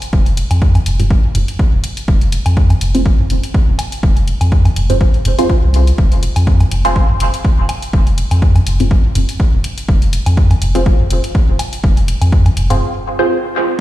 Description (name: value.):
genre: dub techno.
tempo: 123 BPM.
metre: 4/4.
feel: swing 55% on 16ths.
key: F minor.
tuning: A4 = 440 Hz.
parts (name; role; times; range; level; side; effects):
electronic hi-hat; drums; 0.0-12.8 s; none; -27 LUFS; left 2 dB; dub echo.
warm sub bass; bass; 0.1-12.8 s; F1 to F2; -14 LUFS; equal; sidechain pumping.
electronic kick drum; drums; 0.1-12.4 s; none; -13 LUFS; equal; none.
electronic woodblock and toms; percussion; 0.5-12.8 s; none; -21 LUFS; right 1 dB; sidechain pumping on perc, sidechain pumping on toms, dub echo.
filtered dub chord stab; stabs; 1.0-13.5 s; C4 to C5; -19 LUFS; right 1 dB; phaser, sidechain pumping, dub echo.
room: little or no reverb.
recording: played on a big sound system in a bare room, stone room reverb.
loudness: -11 LUFS.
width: side -15 dB against mid.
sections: 0.0-13.8 A section.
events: filter sweep on synth stab 0.0-13.8; break 12.8-13.8.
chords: 0.0 Fm.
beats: | 0.13 0.62 1.10 1.59 | 2.08 2.57 3.06 3.54 | 4.03 4.52 5.01 5.50 | 5.98 6.47 6.96 7.45 | 7.93 8.42 8.91 9.40 | 9.88 10.37 10.86 11.35 | 11.84 12.32 12.81 13.30.